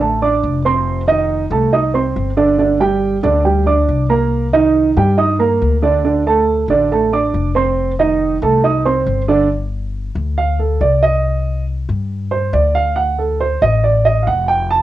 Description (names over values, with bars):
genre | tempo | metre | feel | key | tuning
latin, Cuban son and guajira | 139 BPM | 4/4 | straight | G minor | A4 = 440 Hz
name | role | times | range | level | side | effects
dark baby grand piano | arpeggios | 0.0-14.8 s | D3 to Eb6 | -14 LUFS | right 4 dB | cassette tape
upright bass | bass | 0.0-14.8 s | F1 to G2 | -18 LUFS | left 2 dB | none
room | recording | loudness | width
light reverb | home recording on cassette | -13 LUFS | side -13 dB against mid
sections
0.0-9.5 A section; 9.5-14.8 B section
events
grand piano solo 9.5-14.8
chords
0.0 D5; 0.9 F9; 2.6 Gm; 4.3 Cm7; 6.0 D5; 7.8 F9; 9.5 G5; 11.2 Cm; 13.0 D5